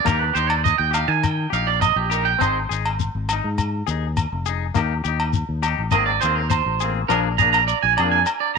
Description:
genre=highlife guitar band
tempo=102 BPM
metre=4/4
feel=straight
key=unclear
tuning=A4 = 440 Hz
part: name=twangy electric guitar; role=accompaniment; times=0.0-8.2 s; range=Eb3 to Ab4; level=-26 LUFS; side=left 15 dB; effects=none
part: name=twangy electric guitar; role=arpeggios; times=0.0-8.6 s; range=G4 to Bb5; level=-20 LUFS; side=right 11 dB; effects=tape echo
part: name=fingered electric bass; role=bass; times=0.1-8.2 s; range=F1 to Eb3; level=-24 LUFS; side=left 2 dB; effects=none
part: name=agogo bells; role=percussion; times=0.1-8.4 s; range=none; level=-28 LUFS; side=left 1 dB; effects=none
part: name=shekere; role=percussion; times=0.1-8.4 s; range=none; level=-25 LUFS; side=left 7 dB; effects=none
room=light reverb, small room ambience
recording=1960s-style stereo with parts hard left and right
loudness=-18 LUFS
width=side -4 dB against mid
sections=0.0-7.1 A section; 7.1-8.6 B section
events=clean electric guitar solo 0.0-7.1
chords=0.1 Eb; 2.4 Ab; 4.8 Eb; 5.9 Abadd9; 7.1 Bb7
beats=| 0.06 0.65 1.24 1.82 | 2.41 3.00 3.58 4.17 | 4.76 5.34 5.93 6.52 | 7.10 7.69 8.28

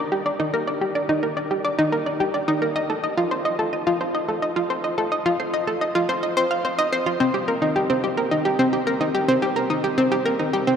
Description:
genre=ambient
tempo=108 BPM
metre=4/4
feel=straight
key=unclear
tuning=A4 = 440 Hz
part: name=analog pluck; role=solo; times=0.0-10.7 s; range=C4 to F5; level=-20 LUFS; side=equal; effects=chorus, analog delay
room=wet cathedral reverb, RT60 6.9 s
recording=in a vast, echoing space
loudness=-20 LUFS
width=side -7 dB against mid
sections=0.0-10.8 A section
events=none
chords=none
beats=| 0.54 1.09 1.65 2.20 | 2.76 3.31 3.87 4.42 | 4.98 5.54 6.09 6.65 | 7.20 7.76 8.31 8.87 | 9.42 9.98 10.54

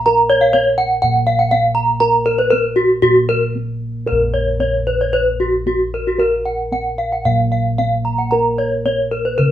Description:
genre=Balinese gamelan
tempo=113-127 BPM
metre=4/4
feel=straight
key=Bb pelog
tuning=A4 = 440 Hz
part: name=gamelan-type bossed gongs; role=bass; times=0.0-9.5 s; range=Bb1 to Bb4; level=-19 LUFS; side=equal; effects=none
part: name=gamelan-type bronze metallophone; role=arpeggios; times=0.1-9.5 s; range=Gb4 to Bb5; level=-15 LUFS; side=equal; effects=none
room=moderate studio reverb, RT60 0.8 s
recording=band playing live in one room, nothing above 10.7 kHz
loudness=-14 LUFS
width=side -11 dB against mid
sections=0.0-4.1 A section; 4.1-9.5 B section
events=break 3.3-4.1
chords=none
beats=| 0.06 0.54 1.02 1.51 | 2.01 2.51 3.02 3.54 | 4.07 4.60 5.13 5.66 | 6.20 6.73 7.26 7.79 | 8.32 8.85 9.38

